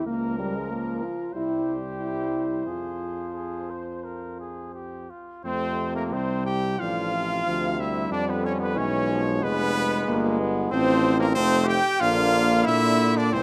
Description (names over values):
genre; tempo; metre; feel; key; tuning
classical, brass quintet; 85-94 BPM; 4/4; rubato; F minor; A4 = 437 Hz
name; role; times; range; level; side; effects
warm trumpet; second line; 0.0-13.4 s; Bb3 to C5; -32 LUFS; equal; none
warm French horn; accompaniment; 0.0-13.4 s; F3 to F4; -31 LUFS; equal; none
clear trumpet; melody; 0.1-13.4 s; Bb4 to G5; -32 LUFS; equal; none
bright trombone; accompaniment; 0.1-13.4 s; C3 to Ab3; -35 LUFS; equal; none
warm tuba; bass; 0.1-13.4 s; F1 to Bb2; -31 LUFS; equal; none
room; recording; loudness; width
moderate recital hall reverb, RT60 1.4 s; close, detailed microphones, faint mains hum; -25 LUFS; mono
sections
0.0-5.5 A section; 5.5-13.4 A section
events
none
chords
0.1 Bbm/Db; 1.3 C; 2.7 Fm; 5.5 F; 8.1 Fdim7; 10.7 F/A; 12.0 Bb